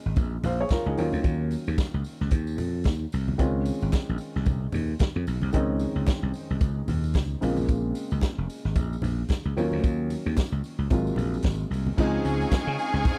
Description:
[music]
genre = disco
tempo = 112 BPM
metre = 4/4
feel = swing 56% on 16ths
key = Db major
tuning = A4 = 441 Hz
[part]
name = warm baby grand piano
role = accompaniment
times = 0.0-13.2 s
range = C3 to F5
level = -33 LUFS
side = equal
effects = none
[part]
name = slap bass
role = bass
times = 0.1-13.0 s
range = F1 to Db3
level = -30 LUFS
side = equal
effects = none
[part]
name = vintage drum kit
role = drums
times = 0.2-13.2 s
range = crash cymbal, hi-hat, kick drum, snare drum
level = -27 LUFS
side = equal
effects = none
[part]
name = congas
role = percussion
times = 0.2-13.2 s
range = none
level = -38 LUFS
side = equal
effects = none
[part]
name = tambourine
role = percussion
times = 0.2-13.2 s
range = none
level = -54 LUFS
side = equal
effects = none
[part]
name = clear studio string section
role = second line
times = 12.0-13.2 s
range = Ab4 to Ab5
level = -33 LUFS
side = equal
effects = none
[part]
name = clear symphonic string section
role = sustained chords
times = 12.0-13.2 s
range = C4 to Db6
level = -37 LUFS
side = equal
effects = none
[sound]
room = small room ambience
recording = dry, close 1970s-style studio recording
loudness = -27 LUFS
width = mono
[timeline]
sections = 0.0-12.0 A section; 12.0-13.2 B section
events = none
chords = 0.0 Bbm9; 1.0 Ebm9; 3.4 Dbmaj9; 7.4 Bbm9; 9.6 Ebm9; 10.9 Ab13; 12.0 Dbmaj9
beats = 0.17 0.71 | 1.25 1.78 2.32 2.86 | 3.39 3.93 4.47 5.00 | 5.54 6.08 6.62 7.15 | 7.69 8.22 8.76 9.30 | 9.84 10.37 10.91 11.44 | 11.98 12.52 13.05

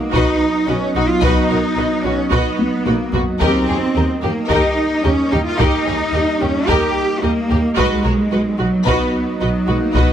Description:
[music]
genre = cinematic, hybrid orchestral and electronic film score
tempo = 110 BPM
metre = 4/4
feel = straight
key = unclear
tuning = A4 = 440 Hz
[part]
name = evolving wavetable pad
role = sustained chords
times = 0.0-10.1 s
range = F#3 to D#5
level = -22 LUFS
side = right 1 dB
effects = chorus, built-in reverb
[part]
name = rich symphonic cello section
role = bass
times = 0.0-10.1 s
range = F#3 to G4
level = -19 LUFS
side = right 1 dB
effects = none
[part]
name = rich symphonic violin section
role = melody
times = 0.1-10.1 s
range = Bb4 to D#5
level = -30 LUFS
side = left 3 dB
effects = none
[part]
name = warm symphonic violin section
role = second line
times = 0.1-10.1 s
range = F#4 to B4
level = -24 LUFS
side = left 2 dB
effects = none
[part]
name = rich symphonic viola section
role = accompaniment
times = 0.1-10.1 s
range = F#4 to G4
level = -23 LUFS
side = right 1 dB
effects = none
[part]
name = warm studio double bass section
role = bass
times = 0.1-10.0 s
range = B1 to Eb2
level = -22 LUFS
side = right 2 dB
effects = none
[part]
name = taiko ensemble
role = drums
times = 0.1-10.1 s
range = none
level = -21 LUFS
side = left 1 dB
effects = none
[sound]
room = light reverb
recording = close, detailed microphones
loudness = -14 LUFS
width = side -10 dB against mid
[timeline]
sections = 0.0-10.1 A section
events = drum fill 2.6-3.4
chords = 0.0 B; 3.4 Eb; 7.8 B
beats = 0.13 0.68 | 1.23 1.77 2.32 2.86 | 3.41 3.95 4.50 5.04 | 5.59 6.13 6.68 7.22 | 7.77 8.32 8.86 9.41 | 9.95

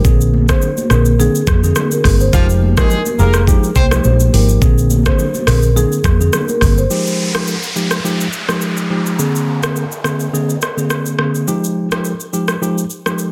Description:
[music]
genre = afrobeats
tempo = 105 BPM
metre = 4/4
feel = swing 55% on 16ths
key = F dorian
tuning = A4 = 442 Hz
[part]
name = mellow tine electric piano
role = accompaniment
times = 0.0-13.3 s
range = D3 to Ab4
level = -20 LUFS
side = equal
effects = none
[part]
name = fingered electric bass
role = bass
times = 0.0-6.9 s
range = F1 to F2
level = -15 LUFS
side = equal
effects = none
[part]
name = afro-pop drum kit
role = drums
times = 0.0-13.3 s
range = hi-hat, kick drum, rim click, shaker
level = -19 LUFS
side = equal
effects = soft clipping on snare
[part]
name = congas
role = percussion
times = 0.3-6.6 s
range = none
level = -25 LUFS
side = equal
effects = none
[part]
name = marimba with medium mallets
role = melody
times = 0.5-6.9 s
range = Ab4 to C5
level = -24 LUFS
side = equal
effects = digital delay
[part]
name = warm horn section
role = second line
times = 2.3-3.9 s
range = F3 to C5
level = -25 LUFS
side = equal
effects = none
[part]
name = downlifter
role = sound effects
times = 6.9-11.5 s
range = none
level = -26 LUFS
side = equal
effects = none
[sound]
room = digital ambience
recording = dense, heavily limited modern master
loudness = -15 LUFS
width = mono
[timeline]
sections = 0.0-6.9 A section; 6.9-13.3 B section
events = none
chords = 0.0 Bb9; 2.3 Fm9; 4.6 Bb9; 6.9 Fm9; 9.2 Bb9; 11.5 Fm9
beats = | 0.05 0.62 1.19 1.76 | 2.33 2.90 3.48 4.05 | 4.62 5.19 5.76 6.33 | 6.91 7.48 8.05 8.62 | 9.19 9.76 10.33 10.90 | 11.48 12.05 12.62 13.19

